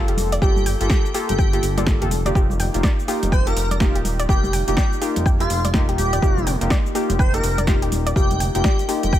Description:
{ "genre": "deep house", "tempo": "124 BPM", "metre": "4/4", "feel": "swing 60% on 16ths", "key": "unclear", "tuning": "A4 = 435 Hz", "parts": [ { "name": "deep mellow chord stab", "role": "stabs", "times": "0.0-9.2 s", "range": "Bb3 to A4", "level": "-25 LUFS", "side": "left 1 dB", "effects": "chorus, sidechain pumping, digital delay" }, { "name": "smooth synth bass", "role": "bass", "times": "0.0-9.2 s", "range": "Eb1 to G1", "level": "-23 LUFS", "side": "equal", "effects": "sidechain pumping" }, { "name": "soft round pluck", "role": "arpeggios", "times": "0.1-9.2 s", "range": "G4 to G5", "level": "-29 LUFS", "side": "left 2 dB", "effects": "chorus, sidechain pumping, digital delay" }, { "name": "deep house drum kit", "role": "drums", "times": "0.1-9.2 s", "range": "cabasa, hi-hat, snare drum", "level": "-27 LUFS", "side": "equal", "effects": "overdrive" }, { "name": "congas", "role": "percussion", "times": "0.2-9.1 s", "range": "none", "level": "-31 LUFS", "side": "right 2 dB", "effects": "none" }, { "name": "airy dreamy lead", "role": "melody", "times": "0.4-9.2 s", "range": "F4 to C5", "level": "-26 LUFS", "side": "equal", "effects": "chorus, digital delay" }, { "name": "electronic kick drum", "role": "drums", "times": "0.4-9.2 s", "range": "none", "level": "-19 LUFS", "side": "equal", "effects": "overdrive" } ], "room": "digital ambience", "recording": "none", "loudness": "-17 LUFS", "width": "side -12 dB against mid", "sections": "0.0-9.2 A section", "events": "none", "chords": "0.0 Gm9; 2.1 F9sus4", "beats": "| 0.42 0.90 1.39 1.87 | 2.35 2.84 3.32 3.81 | 4.29 4.77 5.26 5.74 | 6.23 6.71 7.19 7.68 | 8.16 8.64 9.13" }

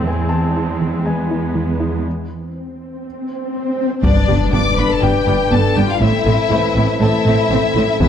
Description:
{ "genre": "cinematic, hybrid orchestral and electronic film score", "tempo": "121 BPM", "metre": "4/4", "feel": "straight", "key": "A minor", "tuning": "A4 = 440 Hz", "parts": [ { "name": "warm symphonic viola section", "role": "accompaniment", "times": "0.0-8.1 s", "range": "G#3 to D4", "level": "-24 LUFS", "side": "equal", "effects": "none" }, { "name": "rich symphonic cello section", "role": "bass", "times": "0.0-8.1 s", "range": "E2 to A2", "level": "-20 LUFS", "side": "right 2 dB", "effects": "none" }, { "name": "bright concert grand piano", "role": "texture", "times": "0.0-8.1 s", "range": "B4 to E6", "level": "-29 LUFS", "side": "left 1 dB", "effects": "digital delay" }, { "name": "analog pluck", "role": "arpeggios", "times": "0.1-8.1 s", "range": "E3 to A4", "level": "-25 LUFS", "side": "right 1 dB", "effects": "chorus, digital delay" }, { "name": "swell and impact", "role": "sound effects", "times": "2.6-6.0 s", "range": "none", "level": "-22 LUFS", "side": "left 1 dB", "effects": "none" }, { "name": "rich symphonic violin section", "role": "melody", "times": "4.0-8.1 s", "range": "D5 to D6", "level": "-20 LUFS", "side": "left 6 dB", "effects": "none" }, { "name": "warm symphonic violin section", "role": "second line", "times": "4.0-8.1 s", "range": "D4 to D5", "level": "-22 LUFS", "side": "left 5 dB", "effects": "none" }, { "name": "dark French horn section", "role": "sustained chords", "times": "4.0-8.1 s", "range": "G#3 to B4", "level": "-20 LUFS", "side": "left 4 dB", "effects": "none" }, { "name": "warm symphonic double bass section", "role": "bass", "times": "4.0-8.1 s", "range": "E1 to A1", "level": "-19 LUFS", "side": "right 2 dB", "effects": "none" }, { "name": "taiko ensemble", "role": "drums", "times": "4.0-5.0, 8.0-8.1 s", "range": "none", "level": "-18 LUFS", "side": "left 1 dB", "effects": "none" } ], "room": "wet concert hall reverb, RT60 1.8 s", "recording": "dark, warm production", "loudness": "-14 LUFS", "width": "side -9 dB against mid", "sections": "0.0-4.0 A section; 4.0-8.1 B section", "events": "build-up 0.0-4.0; break 2.1-4.0; swell 2.6-4.0; impact 4.0-6.0", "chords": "0.1 E; 2.1 N.C.; 4.0 G; 6.0 Am", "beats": "| 0.07 0.56 1.06 1.56 | 2.05 2.55 3.04 3.54 | 4.04 4.53 5.03 5.52 | 6.02 6.52 7.01 7.51 | 8.00" }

